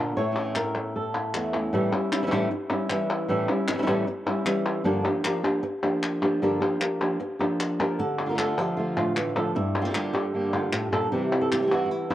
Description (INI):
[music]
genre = flamenco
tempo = 153 BPM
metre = 4/4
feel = straight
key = A phrygian dominant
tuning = A4 = 440 Hz
[part]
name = flamenco guitar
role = melody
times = 0.0-12.1 s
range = E2 to C#5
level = -24 LUFS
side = equal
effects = analog delay
[part]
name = flamenco guitar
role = stabs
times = 0.0-1.7, 8.0-11.9 s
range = G2 to G4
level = -31 LUFS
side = right 2 dB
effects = none
[part]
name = palmas hand claps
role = percussion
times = 0.4-12.1 s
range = none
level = -31 LUFS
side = left 2 dB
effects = none
[sound]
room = wet spring reverb, RT60 2.2 s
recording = worn, warbling old tape, cassette tape, warbly pitch drift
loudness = -23 LUFS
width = side -13 dB against mid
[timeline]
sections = 0.0-1.7 A section; 1.7-8.0 B section; 8.0-12.1 C section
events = none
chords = 0.2 A; 1.7 A7; 4.9 Gm7; 8.0 Dm; 9.6 Gm; 11.1 C